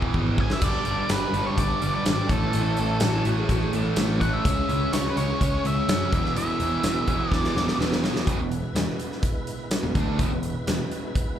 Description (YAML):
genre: classic rock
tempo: 125 BPM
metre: 4/4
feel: straight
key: E mixolydian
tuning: A4 = 440 Hz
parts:
  - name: tonewheel organ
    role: sustained chords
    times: 0.0-11.4 s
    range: G3 to C#5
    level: -38 LUFS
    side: right 1 dB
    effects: none
  - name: biting overdriven guitar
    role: riff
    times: 0.0-10.8 s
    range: E2 to D4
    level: -27 LUFS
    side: right 1 dB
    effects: slapback echo
  - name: growling picked electric bass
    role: bass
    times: 0.0-10.8 s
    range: E1 to F#2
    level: -27 LUFS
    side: equal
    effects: overdrive
  - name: huge arena drum kit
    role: drums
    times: 0.0-11.3 s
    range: crash cymbal, hi-hat, kick drum, snare drum, tambourine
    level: -27 LUFS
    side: equal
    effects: none
  - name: octave-fuzz lead guitar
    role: melody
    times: 0.4-7.8 s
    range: A4 to G#5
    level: -29 LUFS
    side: equal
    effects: distortion, slapback echo
  - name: clean lap steel guitar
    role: second line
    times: 3.0-8.2 s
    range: E4 to C#5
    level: -34 LUFS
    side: left 1 dB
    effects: slapback echo
room: small room ambience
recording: live gig heard through the venue's PA, club reverb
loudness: -22 LUFS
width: side -10 dB against mid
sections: 0.0-8.3 A section; 8.3-11.4 B section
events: drum fill 0.0-0.6, 7.3-8.3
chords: 0.0 E; 0.6 G; 2.3 A; 4.4 C#m; 6.1 E